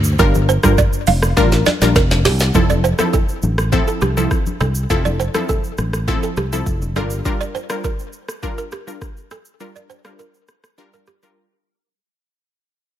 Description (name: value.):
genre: afrobeats.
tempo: 102 BPM.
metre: 4/4.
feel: straight.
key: unclear.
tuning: A4 = 440 Hz.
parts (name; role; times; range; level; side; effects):
fingered electric bass; bass; 0.0-7.2 s; F1 to D2; -18 LUFS; equal; none.
afro-pop drum kit; drums; 0.0-11.4 s; hi-hat, kick drum, rim click, shaker, snare drum, toms; -19 LUFS; equal; overdrive.
analog pluck; accompaniment; 0.2-11.4 s; F3 to Bb4; -21 LUFS; left 1 dB; chorus.
balafon; riff; 0.2-11.2 s; G4 to F5; -22 LUFS; right 7 dB; ping-pong delay.
congas; percussion; 0.2-7.1 s; none; -27 LUFS; left 3 dB; none.
room: little or no reverb.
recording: none.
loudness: -15 LUFS.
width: side -11 dB against mid.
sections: 0.0-2.5 A section; 2.5-12.0 B section.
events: drum fill 1.4-2.5; fade-out 2.5-12.0; break 11.4-12.0.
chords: 0.0 Gm7; 2.5 Fmaj7; 7.0 Gm7.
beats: | 0.19 0.78 1.37 1.96 | 2.54 3.13 3.72 4.31 | 4.90 5.49 6.07 6.66 | 7.25 7.84 8.43 9.02 | 9.60 10.19 10.78 11.37.